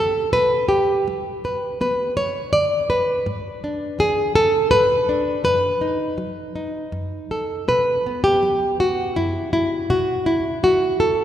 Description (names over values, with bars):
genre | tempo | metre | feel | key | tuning
folk, solo fingerstyle acoustic guitar | 82 BPM | 3/4 | straight | B minor | A4 = 442 Hz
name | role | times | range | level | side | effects
nylon-string guitar | solo | 0.0-11.2 s | F#2 to D5 | -18 LUFS | equal | none
room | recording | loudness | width
wet church reverb, RT60 2.9 s | recorded in a church or concert hall, faint mains hum | -18 LUFS | side -10 dB against mid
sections
0.0-7.7 A section; 7.7-11.2 B section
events
none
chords
0.0 Em (rootless); 1.1 G; 3.3 E7/G#; 5.4 B7/F#; 7.7 B5